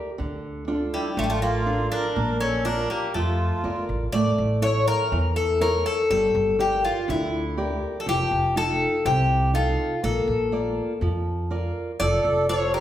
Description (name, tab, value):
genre	greek folk, Greek bouzouki band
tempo	122 BPM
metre	4/4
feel	straight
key	A phrygian dominant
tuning	A4 = 439 Hz
part	fingerpicked steel-string acoustic guitar	accompaniment	0.0-12.8 s	C3 to D5	-28 LUFS	right 2 dB	none
part	upright bass	bass	0.2-12.8 s	F1 to F2	-27 LUFS	equal	none
part	Greek bouzouki	melody	0.9-12.8 s	G3 to D5	-24 LUFS	left 2 dB	none
part	accordion	second line	0.9-3.8, 12.0-12.8 s	E4 to Bb4	-30 LUFS	right 3 dB	light tremolo tuning
room	wet recital hall reverb, RT60 1.3 s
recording	recorded in a church or concert hall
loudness	-21 LUFS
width	side -11 dB against mid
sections	0.0-4.1 A section; 4.1-12.8 B section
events	none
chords	0.2 Dm; 2.2 Bb; 4.1 A; 6.1 Gm; 8.1 F7; 10.0 Bb; 12.0 F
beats	| 0.19 0.68 1.17 1.67 | 2.16 2.65 3.14 3.64 | 4.13 4.62 5.11 5.61 | 6.10 6.59 7.08 7.57 | 8.06 8.55 9.05 9.54 | 10.03 10.52 11.01 11.51 | 12.00 12.49